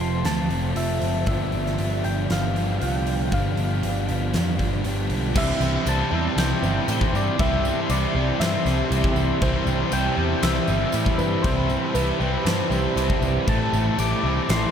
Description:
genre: rock, shoegaze and dream pop.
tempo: 118 BPM.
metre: 4/4.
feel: straight.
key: unclear.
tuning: A4 = 440 Hz.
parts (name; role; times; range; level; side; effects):
soft struck synth lead; melody; 0.0-14.7 s; B4 to D6; -29 LUFS; left 2 dB; chorus, ping-pong delay.
overdriven electric guitar; riff; 0.0-14.7 s; F2 to E4; -29 LUFS; left 8 dB; wide subtle chorus.
overdriven semi-hollow guitar; riff; 0.0-14.7 s; F2 to G4; -28 LUFS; right 7 dB; reverse reverb.
picked electric bass; bass; 0.0-14.6 s; F1 to A2; -25 LUFS; equal; none.
huge arena drum kit; drums; 0.0-14.6 s; crash cymbal, hi-hat, kick drum, snare drum; -27 LUFS; equal; none.
overdriven electric guitar; riff; 5.3-14.7 s; A2 to C4; -29 LUFS; equal; none.
deep dark ambient pad; sustained chords; 6.8-14.7 s; G4 to C6; -32 LUFS; equal; chorus, built-in reverb.
tambourine; percussion; 5.6-14.6 s; none; -42 LUFS; right 12 dB; none.
room: moderate huge ambient reverb, RT60 8.2 s.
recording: dreamy mix soaked in reverb.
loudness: -20 LUFS.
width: side -8 dB against mid.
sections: 0.0-5.4 A section; 5.4-14.7 B section.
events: none.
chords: 0.0 Fmaj7; 1.3 G7; 5.4 C6; 13.5 Am7.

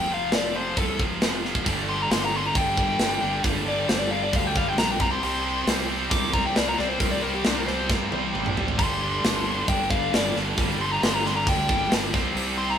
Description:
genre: hard rock.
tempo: 135 BPM.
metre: 4/4.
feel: straight.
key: unclear.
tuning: A4 = 439 Hz.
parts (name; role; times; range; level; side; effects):
dark smooth lead guitar; melody; 0.0-12.8 s; D4 to D6; -26 LUFS; left 2 dB; overdrive.
scooped high-gain guitar; riff; 0.0-12.8 s; F2 to C4; -28 LUFS; right 2 dB; distortion.
fuzz fingered electric bass; bass; 0.0-12.8 s; F1 to G2; -32 LUFS; right 1 dB; overdrive.
tight metal drum kit; drums; 0.3-12.5 s; hi-hat, kick drum, snare drum, toms; -26 LUFS; equal; none.
heavy high-gain guitar; riff; 1.6-12.8 s; G2 to C4; -31 LUFS; equal; distortion.
overdriven tonewheel organ; sustained chords; 1.7-12.8 s; G3 to D5; -37 LUFS; right 3 dB; none.
room: moderate studio reverb, RT60 0.6 s.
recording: band playing live in one room.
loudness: -21 LUFS.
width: side -8 dB against mid.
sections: 0.0-12.8 A section.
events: lead electric guitar solo 0.0-12.8; drum fill 7.9-8.8.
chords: 0.0 F5; 1.7 G5; 5.0 Csus2; 8.8 G5; 12.1 Csus2.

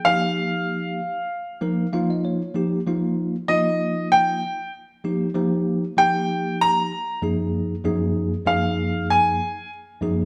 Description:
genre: jazz.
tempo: 96 BPM.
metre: 4/4.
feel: swing 56% on 16ths.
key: Eb major.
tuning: A4 = 440 Hz.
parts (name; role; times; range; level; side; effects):
bright concert grand piano; melody; 0.0-9.7 s; Eb5 to Bb5; -23 LUFS; equal; none.
bell-like tine electric piano; accompaniment; 0.1-10.2 s; Gb2 to F5; -25 LUFS; equal; none.
room: wet stone room reverb, RT60 1.4 s.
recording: band playing live in one room.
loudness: -23 LUFS.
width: mono.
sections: 0.0-2.5 A section; 2.5-10.2 B section.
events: tine electric piano fill 1.6-2.5; grand piano solo 2.5-10.2.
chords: 0.0 Ebsus2; 2.5 Ebadd9; 7.2 Gbmaj9.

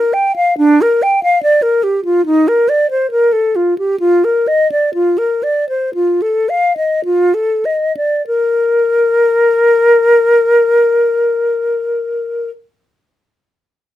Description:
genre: classical, baroque-style fantasia for unaccompanied flute.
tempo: 48-73 BPM.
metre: 4/4.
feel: rubato.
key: Bb major.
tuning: A4 = 440 Hz.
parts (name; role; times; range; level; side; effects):
hollow concert flute; solo; 0.0-12.5 s; D4 to G5; -11 LUFS; left 1 dB; none.
room: light reverb.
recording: close, detailed microphones.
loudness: -11 LUFS.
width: side -13 dB against mid.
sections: 0.0-8.2 A section; 8.2-12.9 B section.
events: slowing down 0.0-8.2.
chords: none.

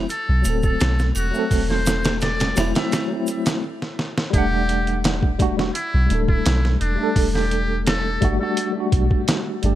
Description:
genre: trip hop.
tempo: 85 BPM.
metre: 4/4.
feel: straight.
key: E minor.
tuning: A4 = 444 Hz.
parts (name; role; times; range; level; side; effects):
tine electric piano; accompaniment; 0.0-9.8 s; F#3 to F#5; -24 LUFS; equal; overdrive, fast stereo tremolo, vintage 12-bit sampler grit, tape echo.
soft 808-style bass; bass; 0.0-9.8 s; D1 to B1; -21 LUFS; equal; none.
trumpet with metal mute; melody; 0.1-8.7 s; D4 to E5; -27 LUFS; equal; tape echo.
trip hop sampler-style drum kit; drums; 0.1-9.8 s; hi-hat, kick drum, snare drum; -22 LUFS; equal; none.
tube shaker and triangle; percussion; 0.1-3.6 s; none; -36 LUFS; right 1 dB; none.
room: digital ambience.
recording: none.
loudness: -18 LUFS.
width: side -13 dB against mid.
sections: 0.0-4.3 A section; 4.3-9.8 B section.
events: stop 3.6-4.3; drum fill 3.8-4.3.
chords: 0.0 D9 (rootless); 4.3 Em11.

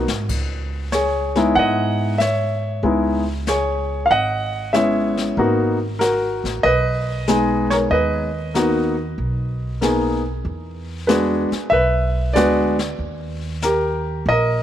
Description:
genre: jazz piano trio.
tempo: 94 BPM.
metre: 4/4.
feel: swing 68% on 8ths.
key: G# minor.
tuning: A4 = 442 Hz.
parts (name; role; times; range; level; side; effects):
warm baby grand piano; melody; 0.0-14.6 s; G#3 to F#5; -18 LUFS; equal; none.
upright bass; bass; 0.0-14.6 s; G#1 to G#2; -25 LUFS; right 1 dB; none.
jazz brush drum kit; drums; 0.1-14.6 s; brushed snare drum, crash cymbal, hi-hat, kick drum, snare drum; -31 LUFS; left 6 dB; none.
room: light reverb, small room ambience.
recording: 1960s-style stereo.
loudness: -17 LUFS.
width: side -11 dB against mid.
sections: 0.0-14.6 A section.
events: drum fill 0.0.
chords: 0.3 C#m9; 5.4 G#m9; 10.4 E7; 13.0 D#.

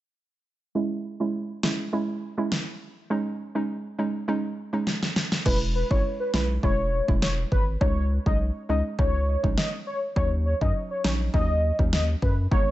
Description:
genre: dancehall.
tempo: 102 BPM.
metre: 4/4.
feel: straight.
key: unclear.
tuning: A4 = 440 Hz.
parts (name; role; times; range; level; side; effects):
hollow square pluck; accompaniment; 0.8-12.7 s; F#3 to E4; -29 LUFS; right 2 dB; chorus, sidechain pumping, low-pass filter.
deep house drum kit; drums; 1.6-12.7 s; crash cymbal, kick drum, snare drum; -25 LUFS; equal; vintage 12-bit sampler grit.
warm velvety synth lead; melody; 5.5-12.7 s; B4 to D#5; -28 LUFS; left 1 dB; chorus.
saturated sub bass; bass; 5.5-12.7 s; E1 to F#2; -26 LUFS; equal; none.
room: digital ambience.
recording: nothing above 8.0 kHz.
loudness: -23 LUFS.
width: side -15 dB against mid.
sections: 0.8-5.5 A section; 5.5-12.7 B section.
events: filter sweep on synth pluck 0.8-5.5; drum fill 4.9-5.5.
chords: 0.8 E6; 3.1 C#sus2; 5.5 E6; 7.8 C#sus2; 10.2 D#m7.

